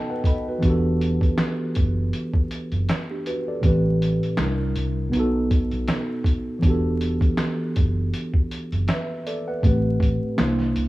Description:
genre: lo-fi hip hop.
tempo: 80 BPM.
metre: 4/4.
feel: swing 56% on 16ths.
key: E minor.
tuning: A4 = 440 Hz.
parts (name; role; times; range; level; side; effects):
mellow tine electric piano; accompaniment; 0.0-10.9 s; A2 to B5; -24 LUFS; right 1 dB; medium stereo tremolo, cassette tape, low-pass filter.
lo-fi sampler-style drum kit; drums; 0.2-10.9 s; finger snaps, hi-hat, kick drum, snare drum; -23 LUFS; equal; vintage 12-bit sampler grit.
vintage muted fingered electric bass; bass; 0.6-10.9 s; E1 to C2; -24 LUFS; equal; none.
room: digital ambience.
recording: vinyl crackle, small room ambience.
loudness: -20 LUFS.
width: side -18 dB against mid.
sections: 0.0-10.9 A section.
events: tine electric piano fill 0.0-0.6.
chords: 0.0 B7; 0.6 Em11; 3.6 Am7; 4.4 C9; 5.1 B7; 6.6 Em11; 9.6 Am7; 10.4 C9.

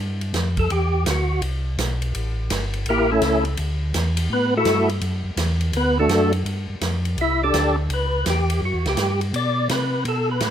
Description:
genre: soul jazz organ trio.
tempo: 167 BPM.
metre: 4/4.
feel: swing 65% on 8ths.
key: G mixolydian from 6.5 s.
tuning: A4 = 440 Hz.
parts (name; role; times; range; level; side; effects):
mellow tonewheel organ; bass; 0.0-10.5 s; G1 to C3; -23 LUFS; equal; chorus vibrato, slow rotary speaker.
swinging big-band drum kit; drums; 0.2-10.5 s; hi-hat, kick drum, ride cymbal, snare drum; -28 LUFS; right 1 dB; none.
percussive tonewheel organ; melody; 0.6-10.5 s; A3 to E5; -21 LUFS; equal; slow rotary speaker, overdrive, chorus vibrato, plate reverb.
room: light reverb.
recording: none.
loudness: -19 LUFS.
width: side -9 dB against mid.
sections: 0.0-6.5 A section; 6.5-10.5 A section.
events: tonewheel organ solo 0.0-10.5.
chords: 0.0 B7(#5, no3) (rootless); 0.7 Em9; 2.1 A7b9; 3.6 Dadd9; 5.7 D; 6.5 G9sus4; 7.9 C#m7b5; 8.6 F#5; 9.3 Bm7.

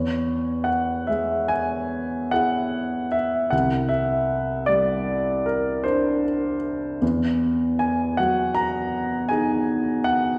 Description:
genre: classical, impressionist solo piano.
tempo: 47-54 BPM (dotted quarters).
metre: 9/8.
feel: rubato.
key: E lydian.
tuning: A4 = 440 Hz.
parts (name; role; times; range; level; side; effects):
clear grand piano; solo; 0.0-10.4 s; C2 to A#5; -23 LUFS; equal; none.
room: wet scoring stage reverb, RT60 1.8 s.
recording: heard from further back in the room.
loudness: -23 LUFS.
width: mono.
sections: 0.0-10.4 A section.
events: none.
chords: 0.0 E6; 3.5 C9; 7.0 Emaj9.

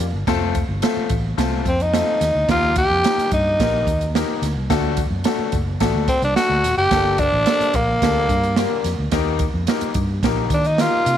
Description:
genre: uptempo 1960s-style soul.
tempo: 108 BPM.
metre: 4/4.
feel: straight.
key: unclear.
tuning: A4 = 440 Hz.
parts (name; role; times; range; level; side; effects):
vintage muted fingered electric bass; bass; 0.0-11.2 s; Eb1 to Eb3; -23 LUFS; equal; none.
swinging big-band drum kit; drums; 0.0-11.2 s; hi-hat, kick drum, snare drum; -22 LUFS; right 4 dB; none.
clear concert grand piano; accompaniment; 0.3-11.1 s; A3 to Bb4; -25 LUFS; left 13 dB; none.
growling tenor saxophone; melody; 1.7-11.2 s; Bb3 to G4; -18 LUFS; equal; none.
room: light reverb, small room reverb.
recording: 1960s-style stereo.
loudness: -17 LUFS.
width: side -10 dB against mid.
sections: 0.0-11.2 A section.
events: none.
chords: 0.3 F; 2.5 Eb; 4.7 D; 6.9 Gmadd9; 9.1 Eb.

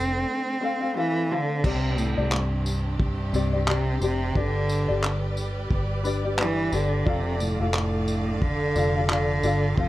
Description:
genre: acoustic pop.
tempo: 88 BPM.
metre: 4/4.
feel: swing 60% on 16ths.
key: unclear.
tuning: A4 = 440 Hz.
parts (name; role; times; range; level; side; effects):
rich cello; melody; 0.0-9.9 s; G2 to C4; -26 LUFS; right 1 dB; none.
ukulele; accompaniment; 0.0-9.9 s; C4 to F5; -30 LUFS; left 4 dB; none.
warm symphonic string section; sustained chords; 0.0-9.9 s; C3 to F5; -34 LUFS; right 1 dB; none.
vintage muted fingered electric bass; bass; 0.0-9.9 s; F1 to C2; -27 LUFS; equal; none.
cloth-damped thuddy drum kit; drums; 1.6-9.9 s; crash cymbal, handclaps, kick drum, tambourine; -28 LUFS; equal; none.
room: light reverb.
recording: none.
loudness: -22 LUFS.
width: side -15 dB against mid.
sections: 0.0-1.6 A section; 1.6-9.9 A section.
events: none.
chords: 0.0 F; 1.6 Csus2; 4.4 G; 7.1 Dm/F.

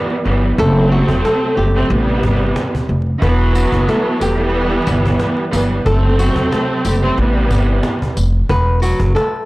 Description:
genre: hip hop, boom-bap hip-hop.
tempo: 91 BPM.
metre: 4/4.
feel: swing 54% on 16ths.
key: E minor.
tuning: A4 = 440 Hz.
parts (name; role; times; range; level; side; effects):
warm studio string section; accompaniment; 0.0-8.1 s; C3 to C4; -17 LUFS; right 1 dB; high-pass filter, low-pass filter.
cajon; drums; 0.1-9.4 s; none; -24 LUFS; equal; none.
upright bass; bass; 0.3-9.1 s; E1 to A1; -16 LUFS; equal; tube saturation.
flamenco guitar; melody; 0.6-9.5 s; F#3 to B4; -20 LUFS; left 1 dB; high-pass filter, low-pass filter, analog delay.
tambourine; percussion; 3.6-9.0 s; none; -33 LUFS; left 3 dB; none.
room: small room reverb.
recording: blown-out, overdriven recording, vinyl crackle, overdrive.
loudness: -13 LUFS.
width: side -20 dB against mid.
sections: 0.0-9.5 A section.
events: none.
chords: 0.0 Emadd9; 0.6 F#dim; 1.9 Am7; 3.2 Emadd9; 5.9 F#dim; 7.2 Am7; 8.5 Esus2.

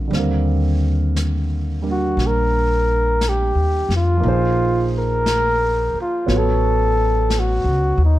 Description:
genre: jazz ballad.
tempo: 59 BPM.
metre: 4/4.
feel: swing 66% on 8ths.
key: unclear.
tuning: A4 = 440 Hz.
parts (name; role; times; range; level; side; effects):
warm concert grand piano; accompaniment; 0.0-8.2 s; D3 to F5; -24 LUFS; right 3 dB; none.
upright bass; bass; 0.0-8.2 s; A1 to F2; -19 LUFS; equal; none.
jazz brush drum kit; drums; 0.1-8.2 s; brushed snare drum, hi-hat, snare drum; -30 LUFS; left 2 dB; none.
breathy flugelhorn; melody; 1.9-8.2 s; Eb4 to Bb4; -19 LUFS; equal; none.
room: light reverb.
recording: dark, warm production.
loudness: -16 LUFS.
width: side -14 dB against mid.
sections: 0.1-8.2 A section.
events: flugelhorn solo 0.1-8.2.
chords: 0.1 Eb6; 4.2 Bbsus2; 6.3 A69.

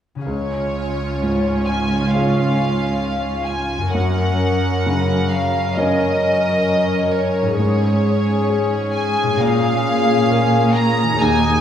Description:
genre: cinematic, emotional film score for orchestra.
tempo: 66 BPM.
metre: 4/4.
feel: rubato.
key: Db major.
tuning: A4 = 440 Hz.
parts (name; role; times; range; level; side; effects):
concert harp; arpeggios; 0.2-11.6 s; Gb2 to F5; -26 LUFS; left 1 dB; none.
warm studio violin section; melody; 0.3-11.6 s; Db5 to Bb5; -21 LUFS; equal; none.
clear grand piano; accompaniment; 0.3-11.6 s; Db2 to Db5; -22 LUFS; equal; none.
warm studio viola section; accompaniment; 0.3-11.6 s; Db4 to Bb4; -22 LUFS; left 2 dB; none.
dark studio cello section; bass; 0.3-11.6 s; Db2 to Bb2; -22 LUFS; right 1 dB; none.
room: wet recital hall reverb, RT60 1.5 s.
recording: heard from further back in the room.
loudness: -16 LUFS.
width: side -9 dB against mid.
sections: 0.3-11.6 A section.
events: none.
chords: 0.3 Db; 3.9 Gb; 7.6 Absus4; 9.4 Bbm7.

